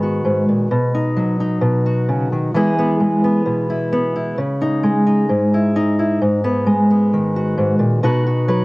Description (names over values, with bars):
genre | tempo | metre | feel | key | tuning
folk | 131 BPM | 4/4 | straight | B major | A4 = 440 Hz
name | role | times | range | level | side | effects
fingerpicked steel-string acoustic guitar | solo | 0.0-8.6 s | G#2 to B4 | -15 LUFS | equal | tape echo
room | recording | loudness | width
light reverb | home recording on cassette | -15 LUFS | side -23 dB against mid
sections
0.0-8.0 A section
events
none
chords
0.0 G#m7; 0.7 B; 2.5 E; 4.4 C#madd9; 6.2 G#m7; 8.0 B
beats
0.25 | 0.70 1.16 1.62 2.08 | 2.54 3.00 3.46 3.92 | 4.38 4.83 5.29 5.75 | 6.21 6.67 7.12 7.58 | 8.04 8.49